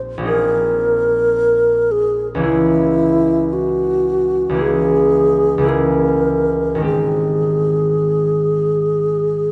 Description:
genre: classical, impressionist duo for alto flute and harp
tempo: 50-56 BPM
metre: 4/4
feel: rubato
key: unclear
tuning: A4 = 440 Hz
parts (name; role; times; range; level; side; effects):
- concert harp; accompaniment; 0.0-9.5 s; Ab1 to Ab4; -22 LUFS; equal; none
- mellow wooden-headed alto flute; melody; 0.3-9.5 s; Fb4 to Bb4; -18 LUFS; equal; none
room: wet concert hall reverb, RT60 2.1 s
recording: nothing above 10.6 kHz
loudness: -16 LUFS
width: mono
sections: 0.0-9.5 A section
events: none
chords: 0.3 Ab69/Bb; 2.5 Dbm6; 6.9 Abmaj7

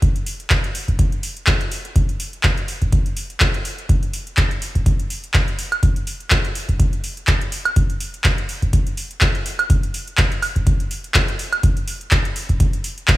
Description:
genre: house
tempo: 124 BPM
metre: 4/4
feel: swing 55% on 16ths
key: none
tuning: none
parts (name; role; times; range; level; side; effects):
- booming analog drum machine; drums; 0.0-13.2 s; handclaps, hi-hat, woodblock; -21 LUFS; right 1 dB; none
- electronic kick drum; drums; 0.0-13.2 s; none; -17 LUFS; equal; none
room: little or no reverb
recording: small room ambience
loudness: -17 LUFS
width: side -17 dB against mid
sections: 0.0-13.2 A section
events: none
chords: none

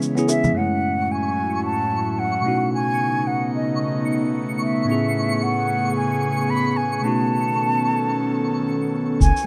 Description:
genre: sunset chillout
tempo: 111 BPM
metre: 4/4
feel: swing 57% on 16ths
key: unclear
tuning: A4 = 440 Hz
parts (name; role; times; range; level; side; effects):
- bell-like tine electric piano; accompaniment; 0.0-9.2 s; F#2 to G#4; -27 LUFS; equal; low-pass filter
- airy breathy pad; sustained chords; 0.0-9.5 s; A2 to A4; -26 LUFS; equal; chorus
- shaker; drums; 0.0-0.5, 9.2-9.5 s; none; -33 LUFS; equal; low-pass filter on perc, low-pass filter on snare
- concert flute; melody; 0.3-9.5 s; D#5 to B5; -26 LUFS; equal; delay
- bongos and congas; percussion; 0.3-0.5 s; none; -27 LUFS; equal; none
- twinkling granular texture; texture; 1.0-9.2 s; C#6; -35 LUFS; equal; built-in reverb
- round analog bass; bass; 9.2-9.3 s; F#1; -19 LUFS; equal; none
- electronic kick drum; drums; 9.2-9.3 s; none; -20 LUFS; equal; none
room: moderate studio ambience, RT60 0.5 s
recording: rough home demo mix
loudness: -22 LUFS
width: mono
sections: 0.6-9.2 A section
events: break 0.0-0.6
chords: 0.0 Amaj7 (rootless); 0.6 F#m9; 2.5 B9; 4.9 Amaj9; 7.0 B9

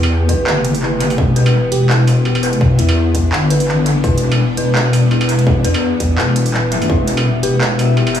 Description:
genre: half-time drum and bass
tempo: 168 BPM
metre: 4/4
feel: swing 55% on 16ths, half-time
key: E minor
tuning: A4 = 440 Hz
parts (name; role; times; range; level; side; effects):
- bowed-like drone; sustained chords; 0.0-8.2 s; E3 to G4; -21 LUFS; left 1 dB; built-in reverb, sidechain pumping
- dark detuned synth bell; arpeggios; 0.0-8.2 s; E4 to E5; -22 LUFS; equal; chorus, analog delay
- deep soft wobble bass; bass; 0.0-8.2 s; E1 to E2; -15 LUFS; left 1 dB; chorus
- industrial drum kit; drums; 0.0-8.2 s; handclaps, hi-hat, struck metal; -20 LUFS; right 2 dB; small room ambience, analog delay
- electronic kick drum; drums; 0.3-7.0 s; none; -17 LUFS; equal; distortion, small room ambience
- bell-like FM electric piano; melody; 1.7-3.3, 7.4-7.6 s; E4 to G4; -26 LUFS; left 1 dB; chorus, phaser, analog delay
- backwards swelling texture; texture; 7.4-8.2 s; E4 to E5; -26 LUFS; left 8 dB; built-in reverb
room: light reverb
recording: echo-heavy mix, studio reverb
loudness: -12 LUFS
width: side -9 dB against mid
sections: 0.0-8.2 A section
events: none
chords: 0.0 Em

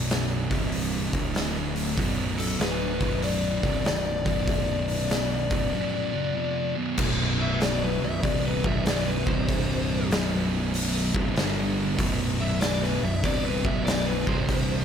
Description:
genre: stoner and doom metal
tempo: 96 BPM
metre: 4/4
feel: swing 65% on 8ths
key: B minor, B phrygian from 7.0 s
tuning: A4 = 440 Hz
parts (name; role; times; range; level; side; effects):
- string machine, full ensemble; sustained chords; 0.0-14.8 s; C3 to F#5; -41 LUFS; equal; none
- thick fuzz guitar; riff; 0.0-14.8 s; B1 to G3; -32 LUFS; left 9 dB; distortion
- thick fuzz guitar; riff; 0.0-14.8 s; B1 to G3; -30 LUFS; right 8 dB; distortion
- fuzz picked electric bass; bass; 0.0-14.8 s; B0 to G1; -30 LUFS; equal; overdrive
- oversized low-tuned drum kit; drums; 0.1-14.7 s; crash cymbal, hi-hat, kick drum, snare drum; -28 LUFS; equal; none
- fuzz lead guitar; melody; 2.4-14.8 s; A4 to E5; -31 LUFS; left 5 dB; distortion, ping-pong delay
room: studio ambience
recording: none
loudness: -23 LUFS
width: side -8 dB against mid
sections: 0.0-7.0 A section; 7.0-14.8 B section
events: lead electric guitar solo 7.0-14.8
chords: 0.4 C5; 1.0 D5; 2.0 Bm; 7.0 B5; 9.2 C5; 10.1 B5; 11.4 G5; 12.0 B5; 14.2 C5

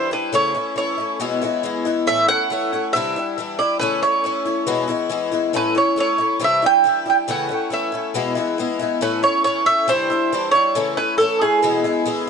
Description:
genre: rock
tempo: 138 BPM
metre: 4/4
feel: straight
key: A major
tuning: A4 = 444 Hz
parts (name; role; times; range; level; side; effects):
- mandolin; melody; 0.0-12.0 s; G#4 to G5; -18 LUFS; right 3 dB; analog delay
- picked twelve-string acoustic guitar; accompaniment; 0.0-12.3 s; E2 to E4; -22 LUFS; left 5 dB; none
room: light reverb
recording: nothing above 10.9 kHz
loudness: -17 LUFS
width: side -6 dB against mid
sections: 0.0-12.3 A section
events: none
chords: 0.3 A/C#; 1.2 E; 2.1 A; 2.9 Cadd9; 3.8 A/C#; 4.7 E; 5.6 A; 6.4 Cadd9; 7.3 A/C#; 8.2 E; 9.0 A; 9.9 Cadd9; 10.8 A/C#; 11.6 E

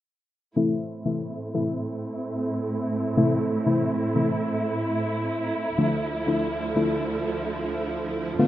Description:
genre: dancehall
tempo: 92 BPM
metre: 4/4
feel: straight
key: A minor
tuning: A4 = 440 Hz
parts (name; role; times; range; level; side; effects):
- deep mellow chord stab; accompaniment; 0.6-8.5 s; C3 to F4; -23 LUFS; left 2 dB; chorus, low-pass filter
- dark studio string section; sustained chords; 0.6-8.5 s; D2 to E4; -26 LUFS; right 2 dB; low-pass filter
room: moderate small room ambience, RT60 0.5 s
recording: rough home demo mix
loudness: -24 LUFS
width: side -13 dB against mid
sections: 0.6-8.5 A section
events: filter sweep 0.6-8.5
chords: 0.6 Am; 5.8 Dmadd9

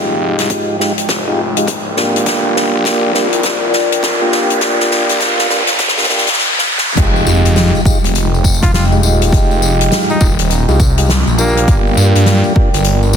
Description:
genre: glitch hop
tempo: 102 BPM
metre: 4/4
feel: swing 62% on 16ths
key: F dorian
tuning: A4 = 440 Hz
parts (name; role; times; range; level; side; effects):
- dark analog pad; sustained chords; 0.0-13.2 s; Ab3 to G5; -21 LUFS; left 2 dB; chorus, phaser, sidechain pumping
- mellow tonewheel organ; stabs; 0.0-12.7 s; Ab3 to G4; -18 LUFS; right 1 dB; slow rotary speaker, sidechain pumping, low-pass filter, tape echo
- phased detuned saw bass; bass; 0.0-13.2 s; Eb1 to G2; -15 LUFS; equal; phaser, tube saturation, high-pass filter
- riser and impact; sound effects; 0.4-9.3 s; none; -19 LUFS; equal; none
- soft-mallet drum kit; drums; 0.4-13.2 s; crash cymbal, hi-hat, rim click, snare drum, tambourine; -17 LUFS; left 2 dB; high-pass filter on hats, high-pass filter on cymbals, high-pass filter on snare, high-pass filter on perc, high-pass filter on room
- electronic kick drum; drums; 0.5-13.2 s; none; -13 LUFS; equal; high-pass filter on kick
- breathy trumpet; melody; 8.6-11.8 s; Bb3 to F4; -23 LUFS; equal; tape echo
room: light reverb, studio reverb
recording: dense, heavily limited modern master, high-pass filter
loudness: -10 LUFS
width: side -7 dB against mid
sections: 0.0-7.0 A section; 7.0-13.2 B section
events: build-up 0.0-7.0; drum fill 0.0-6.4, 6.4-7.0; filter sweep on tonewheel organ 0.0-7.0; filter sweep 0.0-7.0; riser 0.4-7.0; drop 7.0-13.2; impact 7.0-9.3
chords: 0.0 Fm9; 2.3 Gm7; 7.0 Fm9; 11.7 Gm7

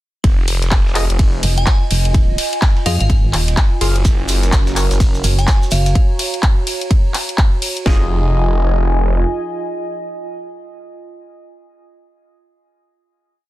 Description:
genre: bass house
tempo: 126 BPM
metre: 4/4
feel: swing 61% on 16ths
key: F phrygian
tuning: A4 = 439 Hz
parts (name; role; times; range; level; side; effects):
- phased detuned saw bass; bass; 0.2-9.2 s; F1 to Gb1; -16 LUFS; equal; phaser, tube saturation, sidechain pumping
- dusty soul sampler-style drum kit; drums; 0.2-5.9 s; hi-hat, ride cymbal, snare drum; -32 LUFS; right 4 dB; sidechain pumping on cymbals, high-pass filter on cymbals, high-pass filter on snare, sidechain pumping on hats, high-pass filter on hats
- house drum kit; drums; 0.2-8.0 s; kick drum, snare drum; -13 LUFS; equal; none
- house drum kit; drums; 0.2-7.8 s; handclaps, hi-hat, ride cymbal; -22 LUFS; left 1 dB; none
- warbly tape-like pad; texture; 0.2-11.3 s; F4 to Bb5; -27 LUFS; right 2 dB; chorus, built-in reverb, sidechain pumping
- percussive organ stab; stabs; 1.0-4.9, 7.9-11.1 s; F4 to F5; -27 LUFS; left 2 dB; chorus, phaser, sidechain pumping, dub echo
- pulsing pluck wobble bass; bass; 1.4-5.9 s; Eb1 to F2; -15 LUFS; equal; chorus, tube saturation, sidechain pumping
- glassy synth bell; melody; 1.6-6.0 s; F5 to Ab5; -28 LUFS; equal; chorus, phaser, dub echo
- dark analog pad; sustained chords; 4.0-11.1 s; Db4 to Ab5; -26 LUFS; right 1 dB; chorus, sidechain pumping
- shekere; percussion; 4.0-5.9 s; none; -28 LUFS; right 3 dB; none
room: little or no reverb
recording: dense, heavily limited modern master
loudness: -13 LUFS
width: side -16 dB against mid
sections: 0.2-7.9 drop; 7.9-11.7 final chord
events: drop 0.2-7.9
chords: 0.2 Fm7; 4.0 Gb; 7.9 Fm7

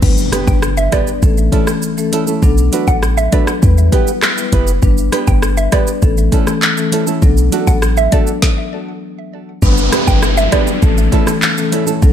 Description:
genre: dancehall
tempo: 100 BPM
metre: 4/4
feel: straight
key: unclear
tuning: A4 = 439 Hz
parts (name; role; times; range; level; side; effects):
- marimba with soft mallets; accompaniment; 0.0-12.1 s; E3 to B4; -18 LUFS; left 5 dB; none
- clean 808-style bass; bass; 0.0-12.1 s; F#1 to E2; -13 LUFS; equal; none
- afro-pop drum kit; drums; 0.0-12.1 s; crash cymbal, handclaps, hi-hat, kick drum, rim click, shaker, snare drum; -15 LUFS; equal; none
- swell, impact and downlifter; sound effects; 0.0-2.4, 9.6-12.1 s; none; -21 LUFS; equal; none
- nylon-string guitar; arpeggios; 0.3-12.0 s; A3 to B4; -21 LUFS; right 7 dB; ping-pong delay
- mallet-like synth pluck; melody; 0.5-10.7 s; D5 to G5; -21 LUFS; right 3 dB; chorus, phaser, ping-pong delay
room: light reverb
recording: none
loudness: -11 LUFS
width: side -9 dB against mid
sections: 0.0-9.6 A section; 9.6-12.1 B section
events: impact 0.0-2.4; stop 8.4-9.6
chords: 0.0 G; 1.2 A; 2.4 Bm7; 3.6 Em; 4.8 G; 6.0 A; 7.2 Bm7; 8.4 N.C.; 9.6 G; 10.8 A

